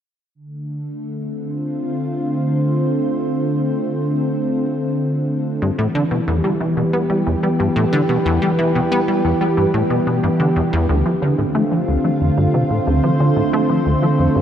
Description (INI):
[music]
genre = ambient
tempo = 91 BPM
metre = 4/4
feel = straight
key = D dorian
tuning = A4 = 440 Hz
[part]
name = lush unison pad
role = sustained chords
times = 0.3-14.4 s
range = D3 to C5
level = -18 LUFS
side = equal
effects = chorus
[part]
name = plucky analog bass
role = riff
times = 5.6-14.4 s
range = D2 to B3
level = -18 LUFS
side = equal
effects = analog chorus, analog delay
[sound]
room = wet lush hall reverb, RT60 3.2 s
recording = dark, warm production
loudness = -16 LUFS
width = side -9 dB against mid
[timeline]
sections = 0.3-10.9 A section; 10.9-14.4 B section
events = filter sweep on analog synth pad 0.3-10.9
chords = 0.3 Dm7; 5.6 Em; 10.9 Dm7